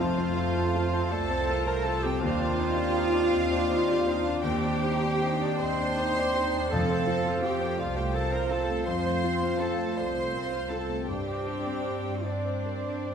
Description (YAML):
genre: cinematic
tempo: 49-57 BPM (dotted quarters)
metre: 6/8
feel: rubato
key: F mixolydian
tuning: A4 = 439 Hz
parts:
  - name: warm studio violin section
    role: melody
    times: 0.0-13.1 s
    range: C5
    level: -43 LUFS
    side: left 5 dB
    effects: none
  - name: mellow clarinet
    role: second line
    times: 0.0-13.1 s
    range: D4 to C5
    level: -36 LUFS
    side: equal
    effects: none
  - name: mellow cor anglais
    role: second line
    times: 0.0-13.1 s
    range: C5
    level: -37 LUFS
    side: right 6 dB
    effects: none
  - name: mellow hollow concert flute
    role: second line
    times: 0.0-13.1 s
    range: D5 to A5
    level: -37 LUFS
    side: left 1 dB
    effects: none
  - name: warm studio violin section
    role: second line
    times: 0.0-13.1 s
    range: D5 to C6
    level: -37 LUFS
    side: left 2 dB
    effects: none
  - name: warm baby grand piano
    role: accompaniment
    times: 0.0-13.1 s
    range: Eb2 to Eb5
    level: -32 LUFS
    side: left 2 dB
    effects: none
  - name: warm studio viola section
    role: accompaniment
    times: 0.0-13.1 s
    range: F3 to A4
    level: -37 LUFS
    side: equal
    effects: none
  - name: mellow French horn section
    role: sustained chords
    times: 0.0-13.1 s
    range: A3 to F4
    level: -35 LUFS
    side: left 3 dB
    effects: none
  - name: dark studio double bass section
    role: bass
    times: 0.0-13.1 s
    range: C2 to G2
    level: -34 LUFS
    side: right 3 dB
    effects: none
  - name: warm studio cello section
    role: bass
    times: 0.0-13.1 s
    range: D4 to C5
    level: -31 LUFS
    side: right 2 dB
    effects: none
  - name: timpani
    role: percussion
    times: 6.7-7.8 s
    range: F2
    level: -34 LUFS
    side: left 1 dB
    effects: none
room: moderate scoring stage reverb, RT60 2.0 s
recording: minimal, uncompressed stereo recording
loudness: -25 LUFS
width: side -7 dB against mid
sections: 0.0-13.1 A section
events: none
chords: 0.0 F; 2.2 Cmadd9/Eb; 6.7 F; 11.1 Csus2/G